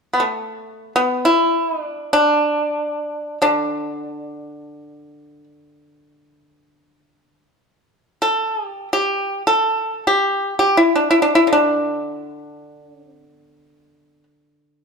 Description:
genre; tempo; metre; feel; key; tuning
chinese traditional, Chinese solo plucked strings; free time; none; none; D zhi mode; A4 = 444 Hz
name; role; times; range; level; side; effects
pipa; solo; 0.1-14.8 s; D3 to A4; -16 LUFS; equal; none
room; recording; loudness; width
moderate recital hall reverb, RT60 1.5 s; dark, warm production; -16 LUFS; side -4 dB against mid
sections
0.0-14.8 A section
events
none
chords
none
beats
free time

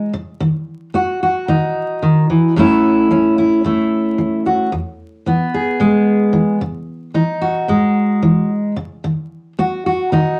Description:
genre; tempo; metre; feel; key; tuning
folk; 111 BPM; 4/4; straight; unclear; A4 = 440 Hz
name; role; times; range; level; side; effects
fingerpicked steel-string acoustic guitar; solo; 0.0-10.4 s; E2 to G#4; -16 LUFS; equal; none
room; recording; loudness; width
moderate small room reverb, RT60 0.6 s; vinyl crackle; -16 LUFS; mono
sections
0.0-10.4 A section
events
none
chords
0.4 B/D#; 2.6 F#m7; 4.7 E; 6.6 C#madd9; 9.0 B/D#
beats
| 0.41 0.94 1.48 2.02 | 2.56 3.10 3.64 4.18 | 4.72 5.26 5.80 6.34 | 6.88 7.42 7.96 8.50 | 9.04 9.58 10.12

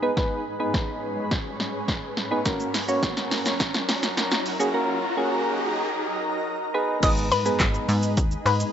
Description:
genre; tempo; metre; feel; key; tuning
dance-pop; 105 BPM; 4/4; straight; G# minor; A4 = 440 Hz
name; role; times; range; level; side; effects
soft electric-piano-like synth keys; accompaniment; 0.0-8.1 s; G#3 to C#5; -26 LUFS; right 1 dB; chorus, sidechain pumping
shimmering ambient pad; sustained chords; 0.0-8.7 s; F#2 to B4; -29 LUFS; equal; chorus, built-in reverb, sidechain pumping
riser; sound effects; 1.0-5.9 s; none; -33 LUFS; equal; none
punchy analog drum machine; drums; 0.2-8.7 s; crash cymbal, handclaps, hi-hat, kick drum, shaker, snare drum; -25 LUFS; equal; none
analog pluck; melody; 7.0-8.7 s; B4 to D#5; -24 LUFS; left 4 dB; chorus, sidechain pumping
plucky analog bass; bass; 7.0-8.6 s; G#1 to G#2; -25 LUFS; equal; sidechain pumping
room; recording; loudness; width
light reverb, digital ambience; dry, gritty hardware recording, high-pass filter, nothing above 7.8 kHz; -22 LUFS; side -9 dB against mid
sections
0.0-7.0 A section; 7.0-8.7 B section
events
build-up 0.0-7.0; drum fill 0.0-4.7; riser 1.0-7.0; drop 7.0-8.7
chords
0.0 G#m; 2.5 F#; 6.7 G#m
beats
| 0.17 0.74 1.31 1.89 | 2.46 3.03 3.60 4.17 | 4.74 5.31 5.88 6.46 | 7.03 7.60 8.17

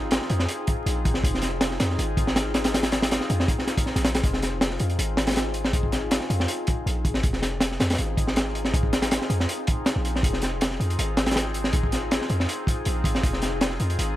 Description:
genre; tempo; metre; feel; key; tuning
drum and bass, jungle; 160 BPM; 4/4; straight; F minor; A4 = 441 Hz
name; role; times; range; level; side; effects
warbly tape-like pad; sustained chords; 0.0-14.2 s; C4 to Ab4; -31 LUFS; left 2 dB; chorus, built-in reverb
warm 808-style bass; bass; 0.0-14.2 s; F1 to F2; -27 LUFS; equal; none
crunchy breakbeat drum kit; drums; 0.1-14.1 s; hi-hat, kick drum, snare drum; -24 LUFS; equal; none
room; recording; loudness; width
small room ambience; vinyl crackle; -22 LUFS; side -14 dB against mid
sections
0.0-14.2 A section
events
none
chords
0.0 Fm7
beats
0.11 0.49 0.86 | 1.24 1.61 1.99 2.36 | 2.74 3.11 3.49 3.86 | 4.24 4.61 4.99 5.36 | 5.74 6.11 6.49 6.86 | 7.24 7.61 7.99 8.36 | 8.74 9.11 9.49 9.86 | 10.24 10.61 10.99 11.36 | 11.74 12.11 12.49 12.86 | 13.24 13.61 13.99

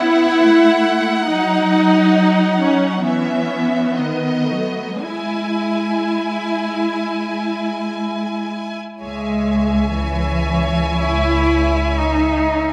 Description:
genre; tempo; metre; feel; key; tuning
classical, slow romantic movement for string orchestra; 53-70 BPM; 4/4; rubato; E major, C# minor from 9.0 s; A4 = 445 Hz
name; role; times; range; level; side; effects
rich studio violin section; melody; 0.0-12.7 s; D#5 to G#5; -27 LUFS; equal; none
rich studio violin section; second line; 0.0-12.7 s; B3 to E5; -27 LUFS; equal; none
rich studio viola section; accompaniment; 0.0-12.7 s; A3 to C#5; -22 LUFS; equal; none
rich studio cello section; bass; 0.0-12.7 s; D#3 to E4; -22 LUFS; equal; none
dark studio double bass section; bass; 9.0-12.7 s; C#2; -24 LUFS; equal; none
room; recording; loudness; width
moderate scoring stage reverb, RT60 2.0 s; none; -18 LUFS; mono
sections
0.0-9.0 A section; 9.0-12.7 B section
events
none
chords
0.0 F#m7; 1.3 D#m7/F#; 3.0 C#m/E; 4.0 B7/D#; 5.1 E/G#; 9.0 C#m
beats
0.42 | 1.29 2.18 3.05 3.97 | 5.05 6.08 7.07 8.04 | 9.02 9.98 11.02 11.98

